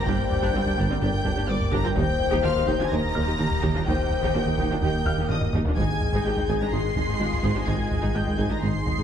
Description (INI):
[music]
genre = cinematic, hybrid orchestral and electronic film score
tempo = 126 BPM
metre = 4/4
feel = straight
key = unclear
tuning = A4 = 440 Hz
[part]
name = warm symphonic violin section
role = melody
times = 0.0-9.0 s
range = D6 to C7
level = -34 LUFS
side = equal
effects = none
[part]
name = rich studio violin section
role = second line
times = 0.0-9.0 s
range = D5 to C6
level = -32 LUFS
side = left 1 dB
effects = none
[part]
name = dark French horn section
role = sustained chords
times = 0.0-9.0 s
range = Eb4 to C5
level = -30 LUFS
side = left 5 dB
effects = none
[part]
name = sweeping resonant pad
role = sustained chords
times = 0.0-9.0 s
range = Eb3 to Eb5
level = -33 LUFS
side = right 2 dB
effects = chorus
[part]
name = saturated sub bass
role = bass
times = 0.0-9.0 s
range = Eb1 to Ab1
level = -34 LUFS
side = equal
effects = none
[part]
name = dark grand piano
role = texture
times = 0.0-9.0 s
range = C5 to Ab6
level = -40 LUFS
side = left 3 dB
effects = tape echo
[part]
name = rich symphonic viola section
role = accompaniment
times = 0.1-9.0 s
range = C4 to Ab4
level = -33 LUFS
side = equal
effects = none
[part]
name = soft round pluck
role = arpeggios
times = 0.1-9.0 s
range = Eb3 to Ab4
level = -36 LUFS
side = right 3 dB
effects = none
[part]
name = round analog bass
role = riff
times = 0.1-9.0 s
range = Eb2 to Ab3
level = -30 LUFS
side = left 2 dB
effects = none
[part]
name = mellow tuba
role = bass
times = 0.1-8.9 s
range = G1 to Eb2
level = -32 LUFS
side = right 3 dB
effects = none
[part]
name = rich symphonic cello section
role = bass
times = 0.1-9.0 s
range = Eb2 to Ab2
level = -33 LUFS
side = right 2 dB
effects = none
[part]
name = rich symphonic double bass section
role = bass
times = 0.1-8.9 s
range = G1 to Eb2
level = -32 LUFS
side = right 3 dB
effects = none
[part]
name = solo taiko drums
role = drums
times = 0.1-9.0 s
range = none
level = -30 LUFS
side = equal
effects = none
[sound]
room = moderate scoring stage reverb, RT60 1.5 s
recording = dark, warm production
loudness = -22 LUFS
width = side -8 dB against mid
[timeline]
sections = 0.0-9.0 A section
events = drum fill 5.3-5.8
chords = 0.0 Gm; 2.0 Eb; 5.8 Ab